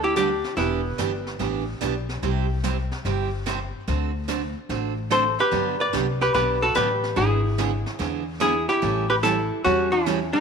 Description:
country, western swing; 146 BPM; 4/4; swing 67% on 8ths; G major; A4 = 438 Hz
archtop guitar, miked and amplified; melody; 0.0-1.4, 5.1-10.4 s; E4 to D5; -22 LUFS; left 3 dB
archtop guitar, miked and amplified; second line; 0.0-1.4, 5.1-10.4 s; A3 to B4; -28 LUFS; right 9 dB
upright bass; bass; 0.0-10.3 s; E1 to E2; -28 LUFS; left 2 dB
picked steel-string acoustic guitar; accompaniment; 0.2-10.2 s; C3 to A4; -28 LUFS; right 10 dB
jazz brush drum kit; drums; 0.2-10.4 s; brushed snare drum, hi-hat, snare drum; -35 LUFS; equal
light reverb, small room ambience; 1960s-style stereo; -21 LUFS; side -6 dB against mid
0.0-10.4 A section
0.0 G; 0.6 Em7; 2.2 C; 3.9 D7; 5.5 Gmaj7; 7.2 E7/G#; 8.8 A7

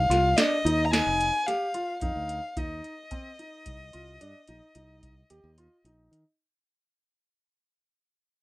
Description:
progressive instrumental, band music in an uneven meter; 110 BPM; 7/4; straight; A4 = 444 Hz
dark violin; melody; 0.0-5.8 s; Eb5 to Bb5; -28 LUFS; left 1 dB
modern bright fingered electric bass; bass; 0.0-6.2 s; F1 to Eb3; -31 LUFS; equal
clear concert grand piano; arpeggios; 0.1-6.2 s; C4 to G4; -30 LUFS; right 1 dB
soft vintage rhythm box; drums; 0.1-6.2 s; hi-hat, kick drum, snare drum; -28 LUFS; equal
light reverb; rough home demo mix; -23 LUFS; side -18 dB against mid
0.0-6.4 A section
fade-out 0.0-6.4; break 5.3-6.4
0.0 Fm7; 2.6 Eb5

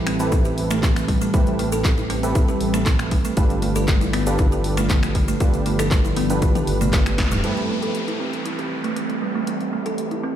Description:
afro house; 118 BPM; 4/4; straight; A minor; A4 = 441 Hz
ethereal airy pad; sustained chords; 0.0-10.4 s; E3 to G4; -29 LUFS; equal; ensemble chorus, built-in reverb, sidechain pumping
kalimba; arpeggios; 0.0-10.4 s; G3 to A4; -26 LUFS; right 2 dB; sidechain pumping, low-pass filter, digital delay
warm analog keys; stabs; 0.0-10.4 s; C4 to B4; -28 LUFS; right 2 dB; chorus, sidechain pumping, low-pass filter, digital delay
smooth gliding synth bass; bass; 0.0-7.4 s; D1 to A1; -25 LUFS; equal; sidechain pumping
deep house drum kit; drums; 0.1-10.2 s; finger snaps, handclaps, hi-hat, snare drum, toms; -28 LUFS; left 1 dB
cabasa; percussion; 0.2-7.4 s; -37 LUFS; left 3 dB
electronic kick drum; drums; 0.3-7.3 s; -20 LUFS; equal; overdrive
downlifter; sound effects; 7.4-10.4 s; -31 LUFS; left 1 dB
light reverb; played on a big sound system in a bare room, large studio reverb; -18 LUFS; side -10 dB against mid
0.0-7.4 A section; 7.4-10.4 B section
drum fill 6.4-7.4; band accent 7.2
0.0 Am7; 3.4 G7; 7.4 Am7

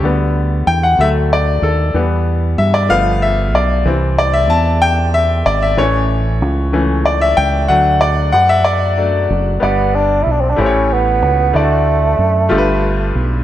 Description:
slow gospel; 62 BPM (dotted quarters); 6/8; straight; G major; A4 = 440 Hz
bright grand piano; accompaniment; 0.0-13.4 s; G2 to A5; -15 LUFS; left 2 dB
fingered electric bass; bass; 0.0-13.4 s; F#1 to G2; -16 LUFS; right 1 dB
mellow bassoon; melody; 9.6-13.2 s; A3 to E4; -15 LUFS; right 3 dB
light reverb, small room ambience; -12 LUFS; side -12 dB against mid
0.0-9.6 A section; 9.6-13.4 B section
grand piano solo 0.0-9.6
0.0 G/D; 1.0 D; 1.9 Em; 2.9 G7; 3.9 C; 5.8 A; 7.7 D; 9.6 G; 10.6 A7; 11.5 D; 12.5 G9

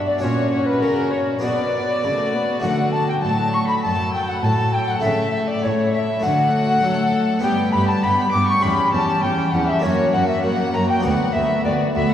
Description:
classical, baroque-style concerto movement with solo episodes; 100 BPM; 4/4; straight; B minor; A4 = 440 Hz
rich chamber violin section; melody; 0.0-12.1 s; E4 to A4; -30 LUFS; left 5 dB
dark chamber viola section; accompaniment; 0.0-12.1 s; F#3 to D4; -24 LUFS; equal
harpsichord; accompaniment; 0.0-12.1 s; D2 to A4; -25 LUFS; equal
warm chamber cello section; bass; 0.0-12.0 s; D2 to F#3; -25 LUFS; right 1 dB
concert flute; melody; 0.1-12.1 s; A#4 to D6; -22 LUFS; left 1 dB
rich chamber violin section; second line; 0.1-12.1 s; A#4 to D6; -24 LUFS; left 2 dB
wet cathedral reverb, RT60 5.5 s; recorded in a church or concert hall, vinyl crackle; -17 LUFS; side -10 dB against mid
0.0-12.1 A section
0.2 F#/A#; 1.4 Bm; 2.6 D; 5.0 A/C#; 6.2 D; 7.4 G; 8.6 C#dim/E; 9.8 F#; 11.0 Bm/D

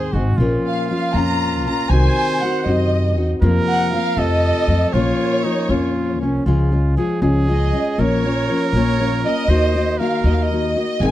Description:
mexican folk, mariachi; 79 BPM (dotted quarters); 6/8; straight; Bb minor, Db major from 6.5 s; A4 = 440 Hz
warm symphonic violin section; melody; 0.0-11.1 s; C5 to Bb5; -22 LUFS; equal
bright trumpet; second line; 0.0-11.1 s; Db4 to C5; -25 LUFS; right 5 dB
nylon-string guitar; accompaniment; 0.0-11.1 s; F2 to Ab4; -20 LUFS; left 2 dB
upright bass; bass; 0.0-11.1 s; Ab1 to Gb2; -19 LUFS; equal
small room ambience; dry, close 1970s-style studio recording; -16 LUFS; side -13 dB against mid
0.0-6.5 A section; 6.5-11.1 B section
0.4 Bbm; 1.9 Cdim; 3.4 Fsus4; 4.2 F; 4.9 Bbm; 6.5 Db; 8.0 Bbm; 9.5 Ebm

